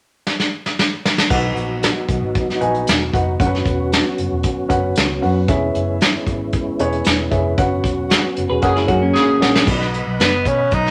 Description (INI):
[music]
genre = uptempo 1960s-style soul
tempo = 115 BPM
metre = 4/4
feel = straight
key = B major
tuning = A4 = 440 Hz
[part]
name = vintage brush drum kit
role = drums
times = 0.3-10.9 s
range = crash cymbal, hi-hat, kick drum, snare drum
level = -21 LUFS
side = equal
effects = none
[part]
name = dark upright piano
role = accompaniment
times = 1.3-10.5 s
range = B3 to G#5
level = -24 LUFS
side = equal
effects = none
[part]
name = tonewheel organ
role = sustained chords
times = 1.3-10.9 s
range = F#3 to B5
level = -26 LUFS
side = equal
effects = overdrive, chorus vibrato, slow rotary speaker
[part]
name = vintage muted fingered electric bass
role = bass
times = 1.3-10.9 s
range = E1 to B2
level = -26 LUFS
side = equal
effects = none
[part]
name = clear horn section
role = second line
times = 8.1-9.6 s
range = C#3 to G#4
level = -23 LUFS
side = equal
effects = none
[part]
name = semi-hollow electric guitar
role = riff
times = 8.5-9.6 s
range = A#3 to B4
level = -21 LUFS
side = equal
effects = none
[part]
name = breathy tenor saxophone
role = melody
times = 10.2-10.9 s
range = B3 to D#4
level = -19 LUFS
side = equal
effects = none
[sound]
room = moderate studio reverb, RT60 0.9 s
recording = none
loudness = -18 LUFS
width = mono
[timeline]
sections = 0.0-1.3 A section; 1.3-9.7 B section; 9.7-10.9 C section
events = drum fill 0.3-1.3, 9.2-9.7; band accent 7.6-9.7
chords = 0.0 N.C.; 1.3 B; 3.4 F#sus4; 5.5 E6; 7.6 F#sus4; 8.6 F#add9; 9.7 B